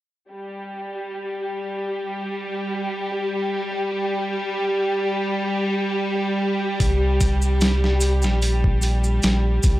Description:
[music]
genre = trip hop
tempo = 74 BPM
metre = 4/4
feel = swing 54% on 16ths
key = unclear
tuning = A4 = 440 Hz
[part]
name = dark symphonic violin section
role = sustained chords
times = 0.3-9.8 s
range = G3 to G4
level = -24 LUFS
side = left 1 dB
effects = low-pass filter
[part]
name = bowed-like drone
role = texture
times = 1.1-9.8 s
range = G3 to G4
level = -30 LUFS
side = right 2 dB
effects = built-in reverb
[part]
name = round analog bass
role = bass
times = 6.8-9.8 s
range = Bb1 to C2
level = -20 LUFS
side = equal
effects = none
[part]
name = boom bap sampler-style drum kit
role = drums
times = 6.8-9.8 s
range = hi-hat, kick drum, snare drum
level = -21 LUFS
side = equal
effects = overdrive, studio reverb
[part]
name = maracas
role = percussion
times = 6.8-9.8 s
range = none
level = -31 LUFS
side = right 1 dB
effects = none
[sound]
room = little or no reverb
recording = dry, gritty hardware recording, transformer saturation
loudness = -20 LUFS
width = side -16 dB against mid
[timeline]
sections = 0.3-9.8 A section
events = none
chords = 0.3 N.C.; 6.8 C5

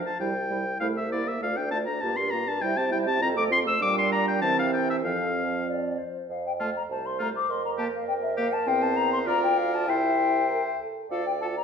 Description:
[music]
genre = quick classical-period movement for wind quintet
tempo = 99 BPM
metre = 2/4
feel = rubato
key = F major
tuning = A4 = 440 Hz
[part]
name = dark clarinet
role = accompaniment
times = 0.0-11.6 s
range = C4 to E5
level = -32 LUFS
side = right 8 dB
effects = none
[part]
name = warm French horn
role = accompaniment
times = 0.0-11.6 s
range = E3 to Bb4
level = -33 LUFS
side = right 1 dB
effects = none
[part]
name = mellow bassoon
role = bass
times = 0.0-11.6 s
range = C2 to C3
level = -32 LUFS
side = right 3 dB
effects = none
[part]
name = clear oboe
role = second line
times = 0.1-11.6 s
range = F4 to E6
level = -28 LUFS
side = left 2 dB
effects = none
[part]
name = mellow hollow silver concert flute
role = melody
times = 0.2-11.6 s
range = G4 to D6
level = -29 LUFS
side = left 6 dB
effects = none
[sound]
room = wet recital hall reverb, RT60 1.5 s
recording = minimal, uncompressed stereo recording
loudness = -24 LUFS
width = side -6 dB against mid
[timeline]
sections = 0.0-6.3 A section; 6.3-11.6 A section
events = none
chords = 0.2 C; 1.4 Dm; 2.0 Gm7; 2.6 C; 3.2 F; 3.8 Gm/Bb; 4.4 C7; 5.0 F; 7.5 Gm7/F; 8.7 C/E; 9.3 Bb/D; 9.9 C; 11.1 Dm

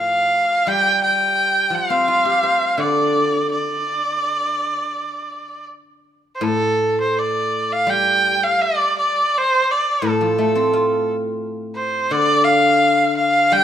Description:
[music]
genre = chinese traditional, Chinese chamber ensemble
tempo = 85 BPM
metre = 4/4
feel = rubato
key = D yu mode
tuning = A4 = 440 Hz
[part]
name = clear erhu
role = melody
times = 0.0-13.6 s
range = A4 to G5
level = -17 LUFS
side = equal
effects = none
[part]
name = guzheng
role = accompaniment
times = 0.0-13.6 s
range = A2 to C5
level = -21 LUFS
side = equal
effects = none
[sound]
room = moderate recital hall reverb, RT60 1.5 s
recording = minimal, uncompressed stereo recording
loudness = -16 LUFS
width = side -10 dB against mid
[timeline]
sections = 0.0-6.4 A section; 6.4-13.6 B section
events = none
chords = none

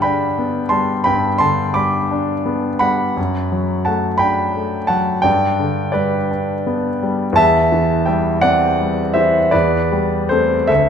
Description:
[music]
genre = classical, romantic nocturne for solo piano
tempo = 57 BPM (dotted quarters)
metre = 12/8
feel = rubato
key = G major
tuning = A4 = 440 Hz
[part]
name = clear concert grand piano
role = solo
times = 0.0-10.9 s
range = D2 to D6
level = -14 LUFS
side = equal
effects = none
[sound]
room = moderate scoring stage reverb, RT60 1.6 s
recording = minimal, uncompressed stereo recording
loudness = -15 LUFS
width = side -7 dB against mid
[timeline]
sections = 0.0-10.9 A section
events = none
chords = 0.0 G; 3.2 D/F#; 5.3 G; 7.4 C/E; 9.5 Am7/E

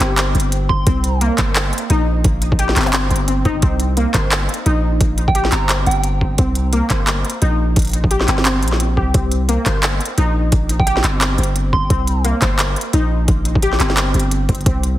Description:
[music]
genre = half-time drum and bass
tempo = 174 BPM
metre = 4/4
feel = swing 58% on 16ths, half-time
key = C minor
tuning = A4 = 436 Hz
[part]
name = warbly dusty pluck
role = arpeggios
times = 0.0-15.0 s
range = Bb3 to C5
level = -22 LUFS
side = left 1 dB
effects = analog chorus, dub echo
[part]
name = long sustained 808-style bass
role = bass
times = 0.0-15.0 s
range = G1 to C2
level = -18 LUFS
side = equal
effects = tube saturation
[part]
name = organic electronic drum kit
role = drums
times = 0.0-14.9 s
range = handclaps, hi-hat, snare drum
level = -20 LUFS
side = equal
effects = none
[part]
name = soft synth bell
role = melody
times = 0.7-1.2, 5.3-6.1, 10.8-12.2 s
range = G5 to C6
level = -26 LUFS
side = right 3 dB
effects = chorus, dub echo
[part]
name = electronic kick drum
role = drums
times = 0.7-14.7 s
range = none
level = -18 LUFS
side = equal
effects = overdrive
[sound]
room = light reverb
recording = heavily compressed radio sound, multiband compression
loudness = -14 LUFS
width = side -14 dB against mid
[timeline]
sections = 0.0-15.0 A section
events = none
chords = 0.0 C5

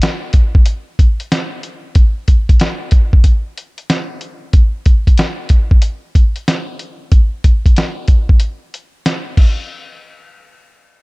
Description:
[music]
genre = hip hop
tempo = 93 BPM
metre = 4/4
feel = swing 65% on 16ths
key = none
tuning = none
[part]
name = lo-fi sampler-style drum kit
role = drums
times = 0.0-9.6 s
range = crash cymbal, hi-hat, kick drum, snare drum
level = -10 LUFS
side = equal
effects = vintage 12-bit sampler grit
[sound]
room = little or no reverb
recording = dark, warm production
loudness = -11 LUFS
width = side -26 dB against mid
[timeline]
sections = 0.0-9.7 A section; 9.7-11.0 B section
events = break 8.4-9.7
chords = none

